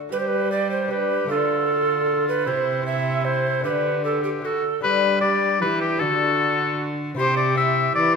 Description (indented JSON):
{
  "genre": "classical, renaissance-style consort dance",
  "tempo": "154 BPM",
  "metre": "3/4",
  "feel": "straight",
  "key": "G major",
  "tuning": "A4 = 440 Hz",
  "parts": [
    { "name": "lute", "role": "accompaniment", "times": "0.0-8.2 s", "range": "C3 to G4", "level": "-28 LUFS", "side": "left 8 dB", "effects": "none" },
    { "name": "clear oboe", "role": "melody", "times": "0.1-8.1 s", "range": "E4 to E5", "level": "-23 LUFS", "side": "left 5 dB", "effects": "none" },
    { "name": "mellow tenor recorder", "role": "second line", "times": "0.1-8.2 s", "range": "F#4 to E5", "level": "-24 LUFS", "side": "right 4 dB", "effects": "none" },
    { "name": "rich cello", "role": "bass", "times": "0.1-8.2 s", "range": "C3 to G3", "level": "-27 LUFS", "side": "right 2 dB", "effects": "none" }
  ],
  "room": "moderate recital hall reverb, RT60 1.4 s",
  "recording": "minimal, uncompressed stereo recording",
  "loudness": "-19 LUFS",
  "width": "side -5 dB against mid",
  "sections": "0.0-4.8 A section; 4.8-8.2 A section",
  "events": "none",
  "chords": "0.1 G; 1.3 Dm; 2.5 C; 3.6 Dsus4; 4.4 D; 4.8 G; 6.0 D; 7.2 C"
}